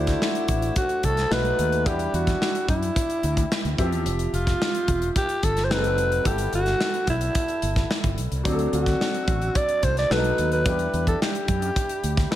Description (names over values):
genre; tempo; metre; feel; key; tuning
polished 1980s jazz-funk pop; 109 BPM; 4/4; straight; G major; A4 = 442 Hz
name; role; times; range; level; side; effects
breathy alto saxophone; melody; 0.0-12.4 s; E4 to D5; -25 LUFS; equal; none
warm grand piano; accompaniment; 0.0-12.4 s; E3 to E5; -29 LUFS; left 1 dB; lush chorus
fretless electric bass; bass; 0.0-12.2 s; E1 to F#2; -26 LUFS; equal; analog chorus
modern studio drum kit; drums; 0.1-12.4 s; hi-hat, kick drum, snare drum; -26 LUFS; equal; gated reverb
room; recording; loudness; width
small room ambience; none; -21 LUFS; side -12 dB against mid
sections
0.0-12.4 A section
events
grand piano fill 12.0-12.4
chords
0.0 D7; 1.3 B7; 1.9 Em9; 3.8 Fmaj7sus2; 5.7 F#dim7; 6.3 G69; 8.5 D7; 10.1 B7; 10.7 Em7